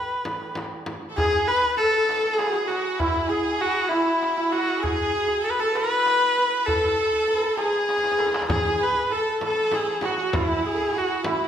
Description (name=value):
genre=Persian modal ensemble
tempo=66 BPM (dotted quarters)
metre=6/8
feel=straight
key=E dastgah mahur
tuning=A4 = 439 Hz
part: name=clear kamancheh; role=melody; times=0.0-11.5 s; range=E4 to B4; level=-22 LUFS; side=left 1 dB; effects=none
part: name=santur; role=second line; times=0.0-11.5 s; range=E4 to B4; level=-28 LUFS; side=right 3 dB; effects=none
part: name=frame drum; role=percussion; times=0.3-1.0, 8.5-11.4 s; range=none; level=-32 LUFS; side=left 1 dB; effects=none
part: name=tombak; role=percussion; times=0.3-11.4 s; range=none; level=-32 LUFS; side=left 1 dB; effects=none
part: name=bright symphonic violin section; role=second line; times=1.1-11.5 s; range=E4 to B4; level=-31 LUFS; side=right 2 dB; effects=none
room=wet recital hall reverb, RT60 1.3 s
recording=none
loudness=-20 LUFS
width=side -9 dB against mid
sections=0.0-1.2 A section; 1.2-11.5 B section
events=drum fill 7.9-8.5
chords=none